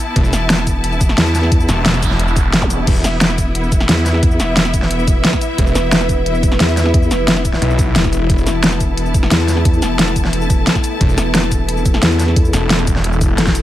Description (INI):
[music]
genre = dark technical drum and bass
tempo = 177 BPM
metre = 4/4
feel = straight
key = unclear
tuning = A4 = 440 Hz
[part]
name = bright studio string section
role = texture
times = 0.0-13.6 s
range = B3 to A5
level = -23 LUFS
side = left 2 dB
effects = sidechain pumping
[part]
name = snarling distorted saw bass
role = bass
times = 0.2-3.0, 5.6-8.5, 11.0-13.4 s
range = E1 to B1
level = -17 LUFS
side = equal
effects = distortion, overdrive
[part]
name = dubstep drum kit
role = drums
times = 0.2-13.6 s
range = cabasa, crash cymbal, hi-hat, snare drum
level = -16 LUFS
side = equal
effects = overdrive, studio reverb
[part]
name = electronic kick drum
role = drums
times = 0.2-13.5 s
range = none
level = -16 LUFS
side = equal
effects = overdrive, studio reverb
[part]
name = vowel-sweep wobble bass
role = bass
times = 0.3-13.6 s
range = E1 to E2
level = -18 LUFS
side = equal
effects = chorus
[part]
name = noise sweep and zap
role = sound effects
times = 1.7-2.9 s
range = none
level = -25 LUFS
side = right 3 dB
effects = none
[part]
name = deep dark ambient pad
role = sustained chords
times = 4.4-13.6 s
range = B3 to B4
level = -22 LUFS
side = left 1 dB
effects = chorus, built-in reverb, vintage 12-bit sampler grit, sidechain pumping
[sound]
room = little or no reverb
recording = none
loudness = -12 LUFS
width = side -13 dB against mid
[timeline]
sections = 0.0-13.6 A section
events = noise sweep 1.7-2.9; drum fill 13.4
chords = 0.0 E5